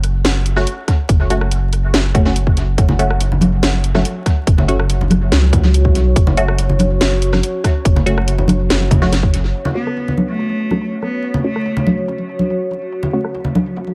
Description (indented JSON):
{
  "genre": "deep dubstep",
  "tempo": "142 BPM",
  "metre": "4/4",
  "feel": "half-time",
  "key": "F# minor",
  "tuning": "A4 = 438 Hz",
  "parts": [
    { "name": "soft dub sub bass", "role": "bass", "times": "0.0-9.5 s", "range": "F#1 to C#2", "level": "-18 LUFS", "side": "equal", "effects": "none" },
    { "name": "garage drum kit", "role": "drums", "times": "0.0-13.9 s", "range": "hi-hat, rim click, snare drum", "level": "-23 LUFS", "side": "equal", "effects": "low-pass filter on hats, low-pass filter on snare, tape echo" },
    { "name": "filtered dub chord stab", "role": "stabs", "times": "0.6-13.2 s", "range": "A3 to F#4", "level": "-26 LUFS", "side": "equal", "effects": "phaser, dub echo" },
    { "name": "electronic kick drum", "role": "drums", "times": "0.9-9.3 s", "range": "none", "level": "-16 LUFS", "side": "equal", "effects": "none" },
    { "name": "deep dark ambient pad", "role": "sustained chords", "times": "5.0-13.9 s", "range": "F#4 to F#5", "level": "-27 LUFS", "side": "equal", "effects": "chorus, built-in reverb" },
    { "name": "congas", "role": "percussion", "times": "2.9-13.6 s", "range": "none", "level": "-22 LUFS", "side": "equal", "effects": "tape echo" },
    { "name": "clear cello", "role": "melody", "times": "9.8-11.9 s", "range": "A3 to B3", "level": "-25 LUFS", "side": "equal", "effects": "dub echo" }
  ],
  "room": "light reverb, digital ambience",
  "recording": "echo-heavy mix, vinyl crackle",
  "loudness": "-16 LUFS",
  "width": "mono",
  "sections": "0.0-9.5 A section; 9.5-13.9 B section",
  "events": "filter sweep on synth stab 9.5-13.9",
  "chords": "0.0 F#5; 9.5 F#m",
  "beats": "0.25 0.67 | 1.09 1.51 1.94 2.36 | 2.78 3.20 3.63 4.05 | 4.47 4.89 5.32 5.74 | 6.16 6.58 7.01 7.43 | 7.85 8.28 8.70 9.12 | 9.54 9.96 10.39 10.81 | 11.23 11.65 12.08 12.50 | 12.92 13.35 13.77"
}